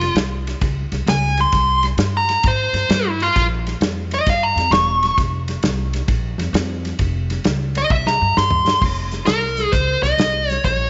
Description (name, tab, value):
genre	electric blues shuffle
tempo	132 BPM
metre	4/4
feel	swing 66% on 8ths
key	F minor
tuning	A4 = 436 Hz
part	dark smooth lead guitar	melody	0.0-10.9 s	E4 to Db6	-20 LUFS	equal	overdrive
part	upright bass	bass	0.0-10.9 s	E1 to Ab2	-25 LUFS	equal	none
part	natural country drum kit	drums	0.0-10.8 s	crash cymbal, hi-hat, kick drum, ride cymbal, snare drum, toms	-24 LUFS	equal	none
room	moderate echo chamber reverb, RT60 2.3 s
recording	nothing above 7.7 kHz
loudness	-18 LUFS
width	mono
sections	0.0-8.8 A section; 8.8-10.9 B section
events	lead electric guitar solo 0.0-8.8; drum fill 7.9-8.8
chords	0.0 N.C.; 1.5 C5; 3.4 Bbm; 5.2 F5; 6.1 Bb5; 7.0 Db/F; 7.9 C5; 8.8 F5